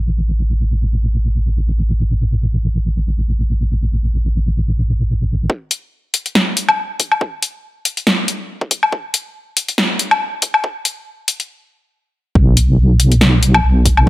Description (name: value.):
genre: deep dubstep.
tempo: 140 BPM.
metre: 4/4.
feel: swing 55% on 16ths, half-time.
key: unclear.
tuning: A4 = 440 Hz.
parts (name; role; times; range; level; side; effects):
deep soft wobble bass; bass; 0.0-5.5, 12.4-14.1 s; A1 to B1; -14 LUFS; equal; chorus.
electronic kick drum; drums; 5.5-14.1 s; none; -16 LUFS; equal; overdrive, high-pass filter on kick.
deep house drum kit; drums; 5.7-14.1 s; hi-hat, snare drum, woodblock; -15 LUFS; left 1 dB; overdrive.
room: light reverb.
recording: high-pass filter.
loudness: -14 LUFS.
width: side -17 dB against mid.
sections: 0.0-5.5 A section; 5.5-12.4 B section; 12.4-14.1 C section.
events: build-up 5.5-12.4; filter sweep 5.5-12.4; stop 11.5-12.4; drop 12.4-14.1.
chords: none.